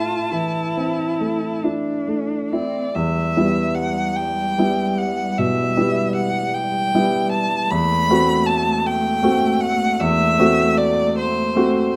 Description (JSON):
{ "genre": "classical, slow romantic movement for piano trio", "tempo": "45-53 BPM (dotted quarters)", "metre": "12/8", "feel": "rubato", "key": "E minor", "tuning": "A4 = 440 Hz", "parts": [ { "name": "rich violin", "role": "melody", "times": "0.0-11.9 s", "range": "C5 to B5", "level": "-24 LUFS", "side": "equal", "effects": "none" }, { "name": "rich cello", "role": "second line", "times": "0.0-12.0 s", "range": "G3 to F4", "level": "-28 LUFS", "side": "equal", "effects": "none" }, { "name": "warm baby grand piano", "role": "accompaniment", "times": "0.0-12.0 s", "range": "E2 to F#4", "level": "-23 LUFS", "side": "equal", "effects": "none" } ], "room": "light reverb", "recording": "none", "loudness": "-20 LUFS", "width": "mono", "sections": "0.0-2.9 A section; 2.9-12.0 B section", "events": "none", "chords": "0.0 Am; 2.9 Em; 7.7 F#m7b5/E" }